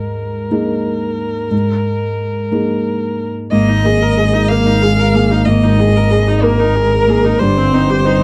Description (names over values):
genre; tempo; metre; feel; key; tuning
neoclassical piano and strings; 62 BPM (dotted quarters); 6/8; rubato; unclear; A4 = 440 Hz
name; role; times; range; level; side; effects
felt-muted upright piano; accompaniment; 0.0-8.2 s; G2 to C5; -18 LUFS; equal; none
rich viola; accompaniment; 0.0-8.2 s; G3 to Bb4; -22 LUFS; equal; none
rich violin; melody; 3.5-8.2 s; Bb4 to F5; -19 LUFS; equal; none
warm double bass; bass; 3.5-8.2 s; G1 to Ab1; -17 LUFS; equal; none
room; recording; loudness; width
little or no reverb; dry, close 1970s-style studio recording; -14 LUFS; mono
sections
0.0-3.5 A section; 3.5-8.2 B section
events
none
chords
0.0 Absus2; 7.4 Cm/G